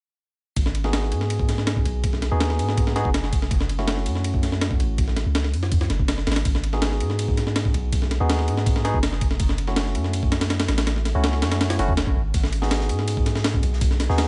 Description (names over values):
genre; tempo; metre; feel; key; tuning
drum and bass, jungle; 163 BPM; 4/4; straight; G# phrygian; A4 = 440 Hz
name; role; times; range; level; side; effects
long sustained 808-style bass; bass; 0.6-14.3 s; F#1 to G#2; -26 LUFS; equal; none
breakbeat sampler-style drum kit; drums; 0.6-14.3 s; kick drum, ride cymbal, snare drum; -26 LUFS; equal; studio reverb
barky tine electric piano; stabs; 0.8-14.3 s; A3 to G#4; -31 LUFS; equal; overdrive, low-pass filter, dub echo
crunchy breakbeat drum kit; drums; 12.3-14.3 s; hi-hat, snare drum; -40 LUFS; equal; high-pass filter on hats, studio reverb, high-pass filter on snare, high-pass filter on room
room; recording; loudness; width
small room ambience; nothing above 10.7 kHz; -23 LUFS; mono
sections
0.6-14.3 A section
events
none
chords
0.6 G#m7; 3.5 F#m7; 6.5 G#m7; 9.4 F#m7; 12.3 G#m7